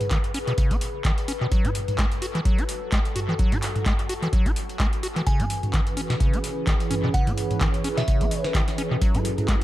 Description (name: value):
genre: acid house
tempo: 128 BPM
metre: 4/4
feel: swing 56% on 16ths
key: C# minor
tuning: A4 = 440 Hz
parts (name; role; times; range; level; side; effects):
- booming analog drum machine; drums; 0.0-9.6 s; handclaps, hi-hat, snare drum, toms; -29 LUFS; equal; analog delay
- warbly tape-like pad; texture; 0.0-9.6 s; C#4 to B4; -33 LUFS; left 1 dB; chorus, built-in reverb, phaser, sidechain pumping
- acid bass, square; riff; 0.1-9.6 s; B2 to F#4; -29 LUFS; equal; overdrive, cassette tape, sidechain pumping, analog delay
- electronic kick drum; drums; 0.1-9.6 s; none; -23 LUFS; equal; none
- glassy synth bell; melody; 5.3-8.4 s; E5 to G#5; -34 LUFS; right 2 dB; chorus, analog delay
- warm analog pad; sustained chords; 5.3-9.6 s; E3 to C#5; -31 LUFS; right 2 dB; chorus, sidechain pumping
room: light reverb, digital ambience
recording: echo-heavy mix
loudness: -21 LUFS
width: side -15 dB against mid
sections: 0.0-9.6 A section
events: none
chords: 0.0 C#5; 1.5 F#m; 5.3 C#m7; 9.0 F#m7